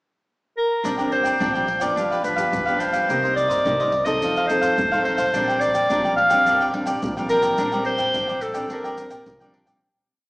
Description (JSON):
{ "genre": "samba and choro", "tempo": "107 BPM", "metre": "4/4", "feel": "straight", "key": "Bb major", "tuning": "A4 = 441 Hz", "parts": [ { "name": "warm clarinet", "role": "melody", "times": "0.6-9.5 s", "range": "A4 to F5", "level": "-20 LUFS", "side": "equal", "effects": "none" }, { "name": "cavaquinho", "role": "accompaniment", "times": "0.8-9.8 s", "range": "D4 to G5", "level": "-26 LUFS", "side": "equal", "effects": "none" }, { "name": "nylon-string guitar", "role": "accompaniment", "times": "0.8-9.8 s", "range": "G2 to A4", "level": "-28 LUFS", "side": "equal", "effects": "none" }, { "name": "upright bass", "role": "bass", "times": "0.8-9.8 s", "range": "G1 to G2", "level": "-36 LUFS", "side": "equal", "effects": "none" }, { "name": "tube shaker, surdo and pandeiro", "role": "percussion", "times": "0.8-9.8 s", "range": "none", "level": "-33 LUFS", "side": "equal", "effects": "none" } ], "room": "wet recital hall reverb, RT60 1.5 s", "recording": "recorded in a church or concert hall, small speaker sound", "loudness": "-18 LUFS", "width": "side -35 dB against mid", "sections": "0.0-0.8 pickup bar; 0.8-9.8 A section", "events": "fade-out 7.6-9.8", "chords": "0.0 N.C.; 0.8 Bb69; 2.0 G7; 3.1 Cm7; 4.2 F7; 5.3 Bb69", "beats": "0.28 | 0.84 1.41 1.97 2.53 | 3.09 3.65 4.22 4.78 | 5.34 5.90 6.46 7.02 | 7.59 8.15 8.71 9.28" }